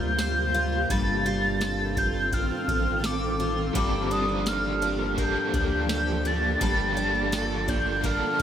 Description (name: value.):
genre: dream pop.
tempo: 84 BPM.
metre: 4/4.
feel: straight.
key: G minor.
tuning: A4 = 440 Hz.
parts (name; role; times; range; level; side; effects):
warm velvety synth lead; melody; 0.0-8.4 s; D6 to A6; -28 LUFS; equal; chorus, digital delay.
shimmering ambient pad; sustained chords; 0.0-8.4 s; C3 to A4; -31 LUFS; equal; chorus, built-in reverb.
picked twelve-string acoustic guitar; arpeggios; 0.0-8.4 s; G2 to C5; -30 LUFS; left 2 dB; lush chorus, digital delay.
round analog bass; bass; 0.0-8.4 s; G1 to D2; -32 LUFS; equal; none.
booming analog drum machine; drums; 0.2-8.4 s; kick drum, ride cymbal, snare drum, tambourine; -30 LUFS; equal; none.
overdriven electric guitar; accompaniment; 3.7-8.4 s; G2 to A4; -32 LUFS; right 3 dB; tremolo, lush chorus.
room: light reverb, digital ambience.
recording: none.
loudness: -23 LUFS.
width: side -9 dB against mid.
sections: 0.0-8.4 A section.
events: none.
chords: 0.0 C7sus4; 0.9 F7/G; 3.8 Gm9.